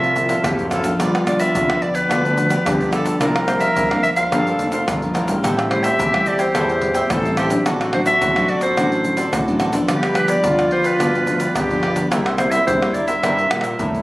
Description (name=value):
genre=samba and choro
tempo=108 BPM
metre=4/4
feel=straight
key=unclear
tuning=A4 = 442 Hz
part: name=clear clarinet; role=melody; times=0.0-14.0 s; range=B4 to F5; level=-20 LUFS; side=equal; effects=none
part: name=breathy concert flute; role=second line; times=0.0-14.0 s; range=E4 to Bb4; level=-24 LUFS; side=equal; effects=none
part: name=cavaquinho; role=accompaniment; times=0.0-14.0 s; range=E4 to G5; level=-26 LUFS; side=right 1 dB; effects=none
part: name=nylon-string guitar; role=accompaniment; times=0.0-14.0 s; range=G2 to E4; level=-23 LUFS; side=equal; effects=none
part: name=fat analog bass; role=bass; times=0.0-14.0 s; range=F1 to Bb2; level=-24 LUFS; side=equal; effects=none
part: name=egg shaker, pandeiro, surdo and tamborim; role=percussion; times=0.0-14.0 s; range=none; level=-24 LUFS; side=equal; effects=none
room=moderate studio reverb, RT60 0.9 s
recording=recorded on a phone in the room, club ambience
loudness=-16 LUFS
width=side -19 dB against mid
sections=0.0-14.0 A section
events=drum fill 13.5-14.0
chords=0.0 Fmaj7; 1.0 G7; 3.2 C9sus4; 5.4 Am7; 7.7 D7/A; 9.9 G7; 12.1 C7